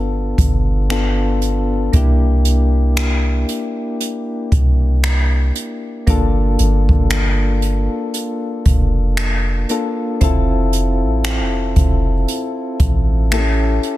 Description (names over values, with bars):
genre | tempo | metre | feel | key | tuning
contemporary R&B | 58 BPM | 4/4 | swing 58% on 16ths | unclear | A4 = 440 Hz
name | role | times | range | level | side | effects
soft electric-piano-like synth keys | accompaniment | 0.0-14.0 s | Bb3 to A4 | -21 LUFS | left 2 dB | chorus, tremolo
soft 808-style bass | bass | 0.0-13.8 s | F1 to C2 | -16 LUFS | equal | none
jazz brush drum kit | drums | 0.4-14.0 s | finger snaps, hi-hat, kick drum | -18 LUFS | equal | soft clipping on snare
room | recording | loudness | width
studio ambience | dense, heavily limited modern master | -14 LUFS | side -15 dB against mid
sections
0.0-14.0 A section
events
none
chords
0.0 G7; 1.9 C9; 6.1 Gm7; 10.2 Fmaj7; 13.3 A7